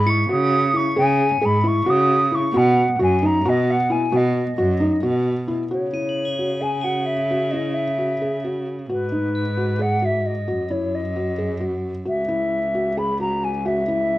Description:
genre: contemporary instrumental, chamber music in an uneven meter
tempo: 264 BPM (eighths)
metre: 7/8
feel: straight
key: C# minor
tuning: A4 = 440 Hz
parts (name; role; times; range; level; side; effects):
- mellow hollow silver concert flute; melody; 0.0-14.2 s; B4 to D#6; -22 LUFS; equal; none
- clear cello; bass; 0.0-14.2 s; C#2 to C#3; -24 LUFS; right 2 dB; none
- felt-muted upright piano; arpeggios; 0.1-14.2 s; D#4 to G#4; -23 LUFS; left 1 dB; none
- crotales; texture; 0.1-0.9, 5.9-10.2 s; C#7 to B7; -32 LUFS; equal; none
room: light reverb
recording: worn, warbling old tape, cassette tape, warbly pitch drift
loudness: -18 LUFS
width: side -16 dB against mid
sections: 0.0-5.7 A section; 5.7-14.2 B section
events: none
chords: 0.0 C#m; 2.5 B; 5.7 C#m; 8.9 G#m7; 10.5 Emaj7sus2/F#; 12.1 C#m

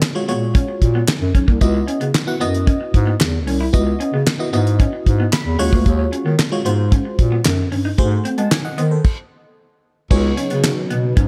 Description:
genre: early-eighties boogie funk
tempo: 113 BPM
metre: 4/4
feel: straight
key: C# dorian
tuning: A4 = 438 Hz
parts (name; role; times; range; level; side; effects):
- damped 70s drum kit; drums; 0.0-11.3 s; crash cymbal, handclaps, hi-hat, kick drum, snare drum; -19 LUFS; equal; gated reverb
- group handclap; percussion; 0.0-10.8 s; none; -28 LUFS; equal; none
- FM electric piano; accompaniment; 0.1-10.8 s; G#3 to B5; -26 LUFS; equal; chorus
- electric guitar at the edge of break-up; riff; 0.3-11.3 s; A#3 to E4; -29 LUFS; equal; lush chorus
- dark bass clarinet; bass; 0.3-11.3 s; B1 to G#3; -21 LUFS; equal; none
- warm analog pad; sustained chords; 10.1-11.3 s; C#3 to D#4; -28 LUFS; equal; chorus
room: small room reverb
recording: none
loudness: -17 LUFS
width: mono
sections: 0.0-10.1 A section; 10.1-11.3 B section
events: FM electric piano fill 5.1-5.9; stop 9.0-10.1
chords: 0.0 D#m11 (rootless); 1.6 C#m11; 5.6 D#m11; 8.0 G#7b9; 10.1 C#9sus4

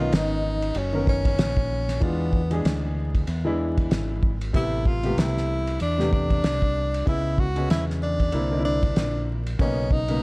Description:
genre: hip hop, jazz-hop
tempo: 95 BPM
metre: 4/4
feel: swing 58% on 16ths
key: unclear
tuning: A4 = 440 Hz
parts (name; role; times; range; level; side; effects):
- breathy tenor saxophone; melody; 0.0-10.2 s; B3 to F#4; -28 LUFS; equal; none
- warm grand piano; accompaniment; 0.0-10.2 s; C3 to A#4; -28 LUFS; left 1 dB; none
- deep dub fingered electric bass; bass; 0.0-10.2 s; F#1 to E2; -27 LUFS; equal; none
- cloth-damped thuddy drum kit; drums; 0.1-10.2 s; hi-hat, kick drum, ride cymbal, snare drum; -25 LUFS; equal; none
room: little or no reverb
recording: dry, gritty hardware recording, transformer saturation, vinyl crackle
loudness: -21 LUFS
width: side -26 dB against mid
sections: 0.0-10.2 A section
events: none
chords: 0.0 Bmaj9; 2.0 E7b9; 4.5 Am9; 7.1 C#m7; 8.3 C9; 9.6 Bmaj9

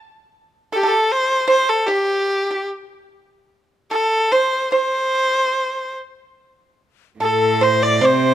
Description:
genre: chinese traditional, Chinese chamber ensemble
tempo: 74 BPM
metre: 4/4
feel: rubato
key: unclear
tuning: A4 = 440 Hz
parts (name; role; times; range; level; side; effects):
- bright erhu; melody; 0.7-8.3 s; G4 to D5; -17 LUFS; equal; none
- pipa; second line; 0.7-8.3 s; G4 to D5; -20 LUFS; right 3 dB; none
- low xiao; second line; 7.2-8.3 s; A4 to D5; -21 LUFS; left 9 dB; none
- warm cello; second line; 7.2-8.3 s; A2 to C3; -20 LUFS; right 5 dB; none
room: light reverb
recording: close, detailed microphones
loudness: -16 LUFS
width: side -11 dB against mid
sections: 0.0-6.4 A section; 6.4-8.3 B section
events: none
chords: none

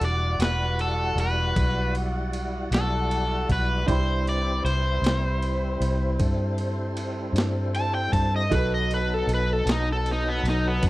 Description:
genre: slow blues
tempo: 52 BPM (dotted quarters)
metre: 12/8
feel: straight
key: E minor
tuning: A4 = 440 Hz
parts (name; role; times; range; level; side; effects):
- crunchy overdriven guitar; melody; 0.0-10.8 s; B3 to A5; -27 LUFS; left 1 dB; slapback echo
- bright upright piano; accompaniment; 0.0-10.9 s; D4 to B5; -34 LUFS; right 5 dB; none
- tonewheel organ; sustained chords; 0.0-10.9 s; F#3 to D5; -33 LUFS; equal; overdrive, chorus vibrato, slow rotary speaker
- warm horn section; sustained chords; 0.0-10.9 s; D#4 to B5; -35 LUFS; right 1 dB; none
- vintage muted fingered electric bass; bass; 0.0-10.9 s; E1 to G2; -26 LUFS; equal; none
- breakbeat sampler-style drum kit; drums; 0.0-10.9 s; kick drum, ride cymbal, snare drum; -29 LUFS; equal; none
room: little or no reverb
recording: dry, close 1970s-style studio recording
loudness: -22 LUFS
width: side -18 dB against mid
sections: 0.0-10.9 A section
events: overdriven electric guitar solo 0.0-10.9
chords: 0.0 Em9; 3.9 Cmaj7; 8.5 B7

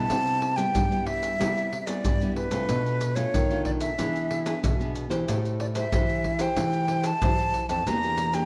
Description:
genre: samba and choro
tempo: 93 BPM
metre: 4/4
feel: straight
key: unclear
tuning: A4 = 440 Hz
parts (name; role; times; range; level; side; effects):
- breathy bright concert flute; melody; 0.0-8.5 s; B4 to Bb5; -30 LUFS; equal; none
- nylon-string guitar; accompaniment; 0.0-8.5 s; G2 to C5; -34 LUFS; equal; none
- nylon-string guitar; bass; 0.0-8.4 s; E2 to G3; -32 LUFS; equal; none
- maracas, surdo and pandeiro; percussion; 0.1-8.5 s; none; -32 LUFS; equal; none
room: moderate large studio reverb, RT60 1.4 s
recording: worn, warbling old tape, cassette tape, warbly pitch drift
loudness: -26 LUFS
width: mono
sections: 0.0-8.5 A section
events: none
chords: 0.1 Cmaj7; 2.7 Bm7b5; 4.0 E7; 5.3 Am7; 7.9 Em7b5

